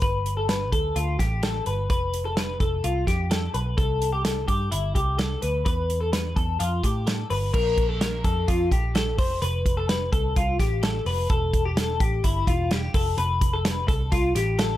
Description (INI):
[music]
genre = jangly indie pop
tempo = 128 BPM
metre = 4/4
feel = straight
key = unclear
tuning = A4 = 440 Hz
[part]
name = twelve-string electric guitar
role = arpeggios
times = 0.0-14.8 s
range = E4 to C5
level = -26 LUFS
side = left 3 dB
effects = lush chorus, plate reverb
[part]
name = vintage muted picked electric bass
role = bass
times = 0.0-14.8 s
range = E1 to A2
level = -26 LUFS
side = equal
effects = none
[part]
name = modern studio drum kit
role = drums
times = 0.0-14.7 s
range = crash cymbal, hi-hat, kick drum, snare drum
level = -26 LUFS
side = right 1 dB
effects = none
[sound]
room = light reverb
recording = none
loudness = -22 LUFS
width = side -14 dB against mid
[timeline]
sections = 0.0-7.5 A section; 7.5-14.8 B section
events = none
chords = 0.0 Gadd9; 1.9 F; 3.8 C; 5.7 E5; 6.6 F; 7.5 Bb5; 9.2 F; 11.3 Emadd11; 12.9 F